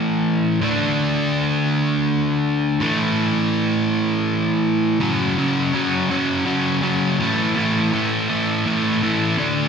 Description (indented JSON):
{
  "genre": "rock",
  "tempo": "55 BPM (dotted quarters)",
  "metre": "6/8",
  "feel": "straight",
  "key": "A major",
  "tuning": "A4 = 439 Hz",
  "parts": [
    { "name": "overdriven electric guitar", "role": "solo", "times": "0.0-9.7 s", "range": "F#2 to D4", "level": "-17 LUFS", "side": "equal", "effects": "none" }
  ],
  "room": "wet concert hall reverb, RT60 1.8 s",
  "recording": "recorded in a church or concert hall",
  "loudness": "-17 LUFS",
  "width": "side -6 dB against mid",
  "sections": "0.0-5.0 A section; 5.0-9.7 B section",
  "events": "build-up 5.0-9.7",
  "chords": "0.0 A5; 0.6 D5; 2.8 A5; 5.0 F#5; 7.2 A5"
}